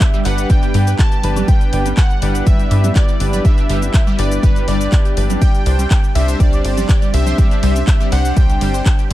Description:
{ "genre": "progressive house", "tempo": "122 BPM", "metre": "4/4", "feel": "straight", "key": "G major", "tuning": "A4 = 440 Hz", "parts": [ { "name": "plucky unison lead", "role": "melody", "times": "0.0-9.1 s", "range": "B4 to A5", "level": "-24 LUFS", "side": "equal", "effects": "sidechain pumping, dub echo" }, { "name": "lush unison pad", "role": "sustained chords", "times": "0.0-9.1 s", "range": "G3 to E4", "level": "-26 LUFS", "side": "equal", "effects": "chorus, sidechain pumping" }, { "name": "wide unison pluck", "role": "arpeggios", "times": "0.0-9.1 s", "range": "G3 to C6", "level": "-25 LUFS", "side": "right 1 dB", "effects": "phaser, sidechain pumping, tape echo" }, { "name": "electronic kick drum", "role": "drums", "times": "0.0-9.0 s", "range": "none", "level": "-13 LUFS", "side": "equal", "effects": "none" }, { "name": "pop drum kit", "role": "drums", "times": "0.0-9.1 s", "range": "cabasa, handclaps, hi-hat, ride cymbal", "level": "-27 LUFS", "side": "left 1 dB", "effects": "sidechain pumping on hats, sidechain pumping on perc, sidechain pumping on cymbals" }, { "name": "woodblock and congas", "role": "percussion", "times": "0.0-9.1 s", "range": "none", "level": "-27 LUFS", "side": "equal", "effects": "sidechain pumping on perc" }, { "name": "soft supersaw", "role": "stabs", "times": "0.3-9.1 s", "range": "D4 to D5", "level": "-24 LUFS", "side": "left 2 dB", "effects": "sidechain pumping" }, { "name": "tight sequencer bass", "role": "bass", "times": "0.3-9.1 s", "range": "G1 to G2", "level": "-17 LUFS", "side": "equal", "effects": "sidechain pumping" } ], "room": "little or no reverb", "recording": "dark, warm production", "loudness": "-12 LUFS", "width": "side -15 dB against mid", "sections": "0.0-9.1 A section", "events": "none", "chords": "0.0 G; 5.4 Csus2" }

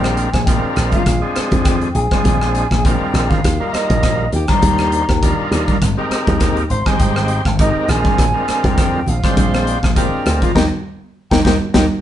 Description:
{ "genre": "electric jazz fusion", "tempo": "101 BPM", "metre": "4/4", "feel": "swing 54% on 16ths", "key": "Eb major", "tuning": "A4 = 439 Hz", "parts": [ { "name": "mellow hollow silver concert flute", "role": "melody", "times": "0.0-11.8 s", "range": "Eb5 to C6", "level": "-22 LUFS", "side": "equal", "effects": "none" }, { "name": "hollow-body jazz guitar", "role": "second line", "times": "0.0-11.9 s", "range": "Eb4 to C5", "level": "-25 LUFS", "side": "left 2 dB", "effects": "none" }, { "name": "overdriven tonewheel organ", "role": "accompaniment", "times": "0.0-11.8 s", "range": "G3 to C5", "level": "-21 LUFS", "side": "equal", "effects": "slow rotary speaker" }, { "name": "slap bass with an envelope filter", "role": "bass", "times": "0.0-11.9 s", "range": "Ab1 to F2", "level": "-19 LUFS", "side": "equal", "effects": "none" }, { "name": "modern studio drum kit", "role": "drums", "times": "0.0-11.9 s", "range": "hi-hat, kick drum, rim click, snare drum", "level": "-17 LUFS", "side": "equal", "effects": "none" }, { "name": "congas", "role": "percussion", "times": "0.8-11.9 s", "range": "none", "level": "-24 LUFS", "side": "right 3 dB", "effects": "none" } ], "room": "moderate studio reverb, RT60 0.7 s", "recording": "band playing live in one room, nothing above 10.6 kHz", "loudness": "-13 LUFS", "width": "side -11 dB against mid", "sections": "0.0-12.0 A section", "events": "drum fill 3.0-3.4, 10.6-12.0; band accent 10.6-12.0", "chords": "0.0 Bb9; 3.4 Ebmaj9; 5.8 Abmaj9; 7.9 Bb9; 10.6 Eb6" }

